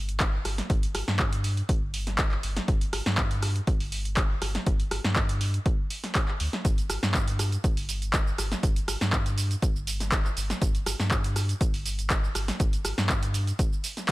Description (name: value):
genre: acid house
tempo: 121 BPM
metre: 4/4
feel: swing 53% on 16ths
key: unclear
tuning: A4 = 444 Hz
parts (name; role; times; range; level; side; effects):
- warm sub bass; bass; 0.0-13.5 s; G1 to G2; -30 LUFS; equal; tube saturation, sidechain pumping
- punchy analog drum machine; drums; 0.1-14.1 s; handclaps, hi-hat, rim click, shaker, snare drum; -29 LUFS; equal; none
- electronic kick drum; drums; 0.2-14.1 s; none; -26 LUFS; equal; none
room: little or no reverb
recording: none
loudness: -24 LUFS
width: side -19 dB against mid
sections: 0.0-14.1 A section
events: none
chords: none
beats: 0.20 | 0.70 1.19 1.69 2.19 | 2.68 3.18 3.67 4.17 | 4.67 5.16 5.66 6.15 | 6.65 7.14 7.64 8.14 | 8.63 9.13 9.62 10.12 | 10.62 11.11 11.61 12.10 | 12.60 13.10 13.59 14.09